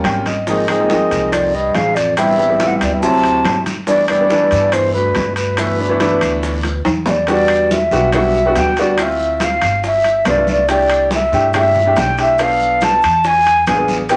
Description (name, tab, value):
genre	Afro-Cuban jazz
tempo	141 BPM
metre	4/4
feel	straight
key	G major, E minor from 7.3 s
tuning	A4 = 440 Hz
part	clear concert grand piano	accompaniment	0.0-14.2 s	E3 to G5	-21 LUFS	equal	none
part	bongos	percussion	0.0-14.2 s	none	-30 LUFS	equal	none
part	congas	percussion	0.0-14.2 s	none	-28 LUFS	equal	none
part	timbales	percussion	0.0-14.2 s	none	-25 LUFS	equal	none
part	upright bass	bass	0.1-14.2 s	G1 to G2	-26 LUFS	equal	none
part	claves	percussion	0.1-13.9 s	none	-34 LUFS	equal	none
part	guiro	percussion	0.1-14.2 s	none	-33 LUFS	equal	none
part	breathy mellow jazz flute	melody	0.5-14.0 s	B4 to A5	-17 LUFS	equal	none
part	breathy baritone saxophone	second line	0.5-6.8 s	D2 to C3	-24 LUFS	equal	none
part	maracas	percussion	0.5-14.2 s	none	-39 LUFS	equal	none
room	moderate studio ambience, RT60 0.5 s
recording	nothing above 10.9 kHz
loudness	-15 LUFS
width	mono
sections	0.0-7.3 A section; 7.3-14.2 B section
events	grand piano fill 0.0-0.5; drum fill 6.6-7.3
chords	0.5 Ab6; 2.2 Am7; 3.0 D9; 3.9 G69; 7.3 Em7; 9.0 Dm9; 9.8 G7; 10.7 C6; 12.4 Bm7b5; 13.2 E7b9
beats	0.05 | 0.47 0.90 1.32 1.75 | 2.17 2.60 3.03 3.45 | 3.88 4.30 4.73 5.16 | 5.58 6.01 6.43 6.86 | 7.28 7.71 8.14 8.56 | 8.99 9.41 9.84 10.26 | 10.69 11.12 11.54 11.97 | 12.39 12.82 13.25 13.67 | 14.10